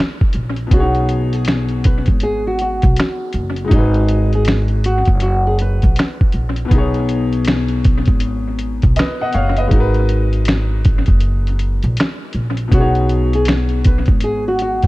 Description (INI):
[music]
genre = lo-fi hip hop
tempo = 80 BPM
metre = 4/4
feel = swing 63% on 16ths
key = unclear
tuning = A4 = 443 Hz
[part]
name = bright upright piano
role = accompaniment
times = 0.0-14.9 s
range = B2 to F#5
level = -22 LUFS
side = left 3 dB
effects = cassette tape, low-pass filter
[part]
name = lo-fi sampler-style drum kit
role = drums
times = 0.0-14.9 s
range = finger snaps, hi-hat, kick drum, snare drum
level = -16 LUFS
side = equal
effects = vintage 12-bit sampler grit, analog delay
[part]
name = upright bass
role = bass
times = 0.3-14.9 s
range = F#1 to B1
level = -18 LUFS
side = equal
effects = none
[part]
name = flamenco guitar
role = melody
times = 0.7-6.2, 12.7-14.9 s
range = D#4 to B4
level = -20 LUFS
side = equal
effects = low-pass filter, analog delay
[sound]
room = studio ambience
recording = echo-heavy mix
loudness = -13 LUFS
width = side -19 dB against mid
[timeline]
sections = 0.7-14.9 A section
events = break 11.2-12.7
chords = 0.0 G#m9; 0.7 B6; 3.7 G#m9; 6.7 B6; 9.7 G#m9; 12.7 B6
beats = | 0.71 1.46 2.21 2.96 | 3.71 4.46 5.21 5.96 | 6.71 7.46 8.21 8.96 | 9.71 10.46 11.21 11.96 | 12.71 13.46 14.21